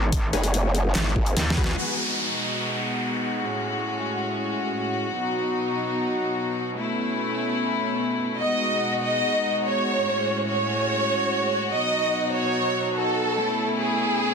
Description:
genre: heavy wobble dubstep.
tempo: 145 BPM.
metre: 4/4.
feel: half-time.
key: G# phrygian.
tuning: A4 = 440 Hz.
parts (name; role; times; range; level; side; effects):
rich chamber string section; sustained chords; 0.0-14.3 s; A2 to C#5; -26 LUFS; left 1 dB; sidechain pumping, low-pass filter.
metallic wobble bass; bass; 0.0-1.8 s; G#1 to D#2; -25 LUFS; equal; chorus, overdrive.
dubstep drum kit; drums; 0.1-1.9 s; crash cymbal, handclaps, hi-hat, snare drum; -28 LUFS; equal; overdrive, low-pass filter on hats, studio reverb, low-pass filter on snare, low-pass filter on cymbals.
electronic kick drum; drums; 0.1-1.7 s; none; -24 LUFS; equal; overdrive, studio reverb.
supersaw stab; stabs; 0.3-2.0 s; D#4 to B4; -34 LUFS; left 3 dB; ping-pong delay.
growl bass; bass; 0.3-1.4 s; F#1 to G#1; -22 LUFS; equal; chorus, overdrive.
downlifter; sound effects; 1.8-5.1 s; none; -29 LUFS; equal; none.
warm studio violin section; melody; 8.4-14.3 s; G#4 to D#5; -23 LUFS; right 1 dB; ping-pong delay.
room: moderate lush hall reverb, RT60 2.0 s.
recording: dense, heavily limited modern master.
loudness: -22 LUFS.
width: side -5 dB against mid.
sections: 0.0-1.8 A section; 1.8-14.3 B section.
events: drop 0.0-1.8; drum fill 1.4-1.8; band accent 1.6.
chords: 0.0 G#m; 1.8 G#m7; 3.4 F#madd9; 5.1 B; 6.7 Aadd9; 8.4 G#m7; 10.1 F#madd9; 11.7 B; 13.4 Aadd9.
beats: | 0.12 0.54 0.95 1.37 | 1.78 2.19 2.61 3.02 | 3.44 3.85 4.26 4.68 | 5.09 5.50 5.92 6.33 | 6.75 7.16 7.57 7.99 | 8.40 8.81 9.23 9.64 | 10.05 10.47 10.88 11.30 | 11.71 12.12 12.54 12.95 | 13.37 13.78 14.19.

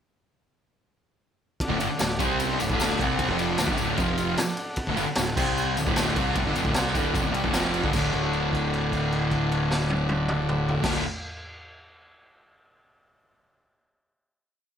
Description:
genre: garage rock duo or trio.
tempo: 152 BPM.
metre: 4/4.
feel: straight.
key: D major.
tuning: A4 = 440 Hz.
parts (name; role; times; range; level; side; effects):
combo organ; sustained chords; 1.6-11.0 s; F4 to G5; -34 LUFS; left 1 dB; none.
raw garage drum kit; drums; 1.6-10.9 s; crash cymbal, kick drum, ride cymbal, snare drum, toms; -29 LUFS; equal; none.
fuzz guitar; riff; 1.7-11.0 s; D2 to C4; -25 LUFS; equal; distortion.
fuzz picked electric bass; bass; 1.7-11.0 s; D1 to C2; -33 LUFS; equal; overdrive.
tambourine; percussion; 1.8-8.1 s; none; -39 LUFS; left 5 dB; none.
room: light reverb, small room ambience.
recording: none.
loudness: -22 LUFS.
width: side -8 dB against mid.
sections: 1.6-7.9 riff; 7.9-11.1 final chord.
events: transistor combo organ fill 4.2-4.8; held note 7.9-10.8.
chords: 1.6 D; 2.2 C5; 2.6 D; 4.0 F5; 4.4 D; 5.4 C5; 5.8 D.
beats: | 1.59 1.99 2.39 2.79 | 3.18 3.58 3.98 4.38 | 4.77 5.17 5.57 5.97 | 6.36 6.76 7.15 7.55 | 7.94 8.34 8.73 9.12 | 9.51 9.90 10.30 10.69.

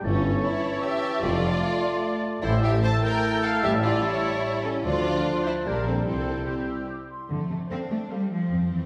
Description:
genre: cinematic, playful, whimsical film cue.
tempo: 149 BPM.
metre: 3/4.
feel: straight.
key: F major.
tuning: A4 = 440 Hz.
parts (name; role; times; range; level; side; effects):
rich studio violin section; melody; 0.0-8.4 s; C4 to F5; -36 LUFS; equal; none.
clear studio violin section; second line; 0.0-8.9 s; A3 to C5; -37 LUFS; equal; none.
hollow flute section; second line; 0.0-7.3 s; Bb5 to E6; -38 LUFS; equal; none.
warm clarinet; second line; 0.0-7.1 s; D4 to F4; -37 LUFS; equal; none.
warm oboe; second line; 0.0-7.1 s; G5 to A5; -38 LUFS; equal; none.
dark bassoon; accompaniment; 0.0-7.1 s; E3 to A3; -35 LUFS; equal; none.
rich studio viola section; accompaniment; 0.0-8.4 s; G4 to A5; -33 LUFS; equal; none.
dark French horn section; sustained chords; 0.0-8.3 s; F3 to A4; -37 LUFS; equal; none.
clear studio double bass section; bass; 0.0-8.8 s; F1 to F2; -32 LUFS; equal; none.
clear tuba; bass; 0.0-6.4 s; F1 to D2; -34 LUFS; equal; none.
rich studio cello section; bass; 0.0-8.9 s; F2 to C4; -33 LUFS; equal; none.
room: wet scoring stage reverb, RT60 1.6 s.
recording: heard from further back in the room.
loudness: -25 LUFS.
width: mono.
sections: 0.0-7.3 A section; 7.3-8.9 B section.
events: none.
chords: 0.0 A7/G; 1.2 Dm/F; 2.4 A5; 3.6 A7; 4.8 Dm7; 5.7 Gm/Bb; 6.1 C; 7.3 F.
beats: | 0.05 0.44 0.84 | 1.24 1.64 2.03 | 2.43 2.83 3.23 | 3.63 4.03 4.43 | 4.85 5.25 5.66 | 6.07 6.48 6.89 | 7.30 7.70 8.10 | 8.50.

